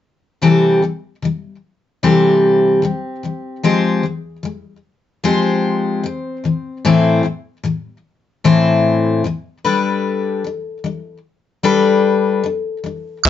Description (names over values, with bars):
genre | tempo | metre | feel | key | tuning
acoustic pop | 75 BPM | 4/4 | straight | C major | A4 = 441 Hz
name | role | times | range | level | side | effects
picked steel-string acoustic guitar | accompaniment | 0.4-13.3 s | A2 to C5 | -14 LUFS | left 3 dB | none
concert harp | melody | 13.3 s | E5 | -19 LUFS | right 1 dB | none
compact cocktail drum kit | drums | 13.3 s | crash cymbal, kick drum | -11 LUFS | right 1 dB | none
room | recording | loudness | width
light reverb | nothing above 7.7 kHz | -14 LUFS | side -10 dB against mid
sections
0.4-13.3 A section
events
none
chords
0.4 C6; 3.6 Fmadd9; 6.4 Am; 9.7 Gadd9